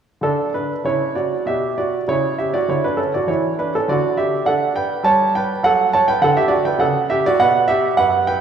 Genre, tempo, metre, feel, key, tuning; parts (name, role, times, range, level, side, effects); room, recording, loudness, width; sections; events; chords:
classical, baroque-style suite movement for grand piano; 101 BPM; 3/4; rubato; D major; A4 = 437 Hz
clear grand piano; solo; 0.2-8.4 s; F#2 to A5; -16 LUFS; right 2 dB
wet church reverb, RT60 2.9 s; small room ambience; -16 LUFS; side -8 dB against mid
0.2-8.4 A section
0.2 D; 1.5 G/B; 2.1 Bm11/C#; 3.9 D; 5.0 G; 5.6 D; 7.4 B5